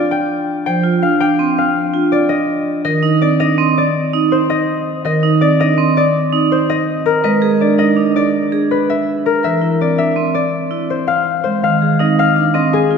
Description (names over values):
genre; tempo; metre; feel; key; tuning
classical, minimalist pattern music; 164 BPM; 6/4; straight; unclear; A4 = 441 Hz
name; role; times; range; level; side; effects
concert harp; melody; 0.0-13.0 s; Ab4 to G5; -17 LUFS; left 5 dB; none
marimba with soft mallets; accompaniment; 0.7-13.0 s; Eb3 to D4; -17 LUFS; right 1 dB; none
vibraphone with hard mallets; arpeggios; 0.7-13.0 s; C4 to C5; -19 LUFS; right 7 dB; none
room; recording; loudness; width
wet church reverb, RT60 3.0 s; recorded in a church or concert hall; -13 LUFS; side -6 dB against mid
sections
0.0-11.1 A section; 11.1-13.0 B section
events
none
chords
0.0 Gsus4; 2.3 Cm7; 6.7 Abmadd9; 8.9 C7; 11.1 Fm7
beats
| 0.11 0.47 0.84 1.20 1.57 1.94 | 2.30 2.67 3.03 3.40 3.77 4.13 | 4.50 4.86 5.23 5.59 5.96 6.33 | 6.69 7.06 7.42 7.79 8.15 8.52 | 8.89 9.25 9.62 9.98 10.35 10.72 | 11.08 11.45 11.81 12.18 12.54 12.91